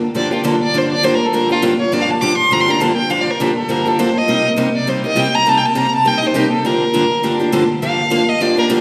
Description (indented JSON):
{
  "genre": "jazz",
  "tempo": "203 BPM",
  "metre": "4/4",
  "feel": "swing 58% on 8ths",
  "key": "G minor",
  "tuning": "A4 = 443 Hz",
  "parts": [
    { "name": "picked steel-string acoustic guitar", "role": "accompaniment", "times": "0.1-8.8 s", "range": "G2 to G4", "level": "-18 LUFS", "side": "equal", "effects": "none" },
    { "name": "warm violin", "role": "melody", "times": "0.2-8.7 s", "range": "F4 to D6", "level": "-19 LUFS", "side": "equal", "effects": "none" }
  ],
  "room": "wet recital hall reverb, RT60 1.6 s",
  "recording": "recorded in a church or concert hall",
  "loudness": "-16 LUFS",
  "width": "mono",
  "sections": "0.0-8.8 A section",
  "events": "violin solo 0.0-8.8",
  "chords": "0.0 Gm7; 4.3 Cm7; 6.6 Gm7",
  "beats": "0.14 0.44 | 0.73 1.03 1.32 1.62 | 1.92 2.21 2.50 2.80 | 3.10 3.39 3.68 3.98 | 4.27 4.57 4.86 5.16 | 5.45 5.75 6.04 6.34 | 6.63 6.93 7.22 7.52 | 7.81 8.11 8.40 8.70"
}